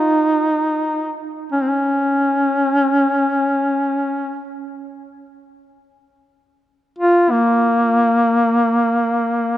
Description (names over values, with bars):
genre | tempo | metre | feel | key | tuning
caucasian folk, Caucasian lament | free time | none | none | Bb minor | A4 = 440 Hz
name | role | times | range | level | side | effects
warm duduk | solo | 0.0-9.6 s | Bb3 to F4 | -15 LUFS | equal | none
room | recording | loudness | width
wet church reverb, RT60 3.5 s | none | -15 LUFS | side -13 dB against mid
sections
0.0-9.6 A section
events
none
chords
none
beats
free time